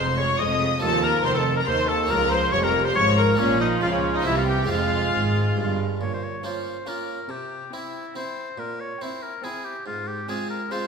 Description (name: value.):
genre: classical, baroque-style concerto movement with solo episodes.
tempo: 140 BPM.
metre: 3/4.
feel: straight.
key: F minor.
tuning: A4 = 440 Hz.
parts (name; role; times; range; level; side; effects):
rich chamber violin section; melody; 0.0-10.9 s; Db5 to Eb6; -29 LUFS; left 4 dB; none.
warm oboe; melody; 0.0-10.9 s; Db4 to Eb5; -27 LUFS; left 2 dB; none.
warm chamber violin section; second line; 0.0-10.9 s; Db4 to Eb5; -27 LUFS; left 2 dB; none.
dark chamber viola section; accompaniment; 0.0-10.9 s; Eb3 to Db4; -30 LUFS; right 4 dB; none.
harpsichord; accompaniment; 0.0-10.9 s; Db2 to F4; -31 LUFS; right 1 dB; none.
warm chamber cello section; bass; 0.0-10.2 s; Db2 to Db3; -28 LUFS; right 1 dB; none.
warm chamber double bass section; bass; 0.0-6.0 s; F1 to Eb2; -28 LUFS; right 3 dB; none.
room: wet recital hall reverb, RT60 1.5 s.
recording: minimal, uncompressed stereo recording.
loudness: -21 LUFS.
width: side -5 dB against mid.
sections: 0.0-6.0 A section; 6.0-10.9 B section.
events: none.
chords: 0.0 Fm; 0.8 F5; 2.1 Bbm; 4.3 C7; 4.7 Fm; 6.0 Bbm; 7.3 C; 8.6 C7/Bb; 9.9 Fm/Ab.